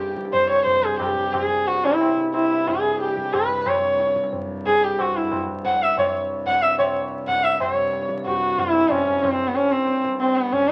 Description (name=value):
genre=indian classical, Hindustani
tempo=182 BPM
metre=3/4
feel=straight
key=C raga puriya dhanashri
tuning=A4 = 441 Hz
part: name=warm sarangi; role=melody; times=0.0-10.7 s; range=B3 to F#5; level=-22 LUFS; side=equal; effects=none
part: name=dark sarangi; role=second line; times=0.0-10.7 s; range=C4 to F#5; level=-33 LUFS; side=equal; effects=none
part: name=pedal harmonium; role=drone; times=0.0-10.7 s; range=C2 to G2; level=-35 LUFS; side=equal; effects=none
part: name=tabla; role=percussion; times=0.1-10.6 s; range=none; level=-33 LUFS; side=equal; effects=none
room=light reverb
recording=very old 78 rpm record, vinyl crackle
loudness=-21 LUFS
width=mono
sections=0.0-7.6 A section; 7.6-10.7 B section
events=speeding up 0.0-10.7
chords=none